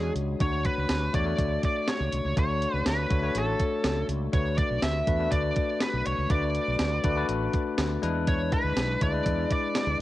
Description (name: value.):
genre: 1980s-style pop.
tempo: 122 BPM.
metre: 4/4.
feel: straight.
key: unclear.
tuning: A4 = 440 Hz.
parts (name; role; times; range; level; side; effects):
smooth overdriven lead guitar; melody; 0.0-10.0 s; G#4 to E5; -30 LUFS; right 1 dB; cassette tape.
bell-like tine electric piano; accompaniment; 0.0-10.0 s; G#3 to D5; -30 LUFS; left 5 dB; none.
mellow fretless electric bass; bass; 0.0-10.0 s; A1 to E2; -30 LUFS; right 1 dB; analog chorus.
clean 12-bit digital drum machine; drums; 0.2-9.9 s; hi-hat, kick drum, snare drum; -28 LUFS; right 1 dB; cassette tape.
room: light reverb.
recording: home recording on cassette.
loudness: -24 LUFS.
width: side -15 dB against mid.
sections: 0.0-10.0 A section.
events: none.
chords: 0.4 Dmaj7; 4.3 Bm7; 8.0 E7.